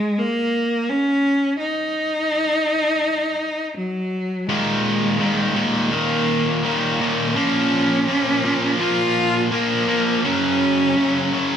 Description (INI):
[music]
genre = rock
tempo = 83 BPM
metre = 4/4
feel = straight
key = Eb minor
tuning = A4 = 440 Hz
[part]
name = rich cello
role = melody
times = 0.0-11.6 s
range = Gb3 to F4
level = -20 LUFS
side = equal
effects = slapback echo
[part]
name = distorted electric guitar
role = riff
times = 4.5-11.6 s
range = Eb2 to Bb3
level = -19 LUFS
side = equal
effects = overdrive
[sound]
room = moderate scoring stage reverb, RT60 1.9 s, small room reverb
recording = dark, warm production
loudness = -18 LUFS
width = side -8 dB against mid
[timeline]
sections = 0.0-4.5 A section; 4.5-11.6 B section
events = build-up 4.5-11.6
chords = 0.0 N.C.; 4.5 Eb5; 7.4 Bbm; 10.2 Gb5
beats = 0.17 0.89 | 1.61 2.33 3.05 3.77 | 4.49 5.21 5.93 6.65 | 7.37 8.08 8.80 9.52 | 10.24 10.96